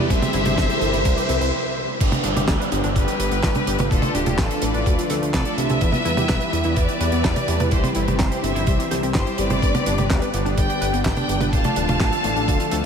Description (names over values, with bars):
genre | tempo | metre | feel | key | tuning
italo disco | 126 BPM | 4/4 | straight | C major | A4 = 440 Hz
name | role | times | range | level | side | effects
rich studio violin section | melody | 0.0-12.9 s | E4 to A5 | -25 LUFS | left 1 dB | analog delay
lush unison pad | sustained chords | 0.0-12.9 s | D3 to G4 | -28 LUFS | left 1 dB | chorus
analog pluck | arpeggios | 0.0-12.8 s | A3 to E5 | -30 LUFS | left 2 dB | chorus, analog delay
mellow synth brass | stabs | 0.0-12.9 s | G2 to D5 | -29 LUFS | right 2 dB | chorus, analog delay
chorused synth bass | bass | 0.0-12.8 s | D1 to E2 | -25 LUFS | equal | tube saturation
riser and downlifter | sound effects | 0.0-5.8 s | none | -28 LUFS | equal | none
damped 70s drum kit | drums | 0.1-12.8 s | crash cymbal, handclaps, hi-hat, snare drum, toms | -25 LUFS | right 2 dB | small room ambience
electronic kick drum | drums | 0.1-12.6 s | none | -22 LUFS | equal | small room ambience
room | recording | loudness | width
moderate huge ambient reverb, RT60 7.0 s | dreamy mix soaked in reverb | -18 LUFS | side -7 dB against mid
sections
0.0-2.0 A section; 2.0-12.9 B section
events
riser 0.0-1.5; filter sweep on analog polysynth 0.0-2.0; stop 1.5-2.0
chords
0.1 C; 2.0 G; 3.9 Dm; 5.8 Em; 7.7 C; 9.6 G; 11.5 Dm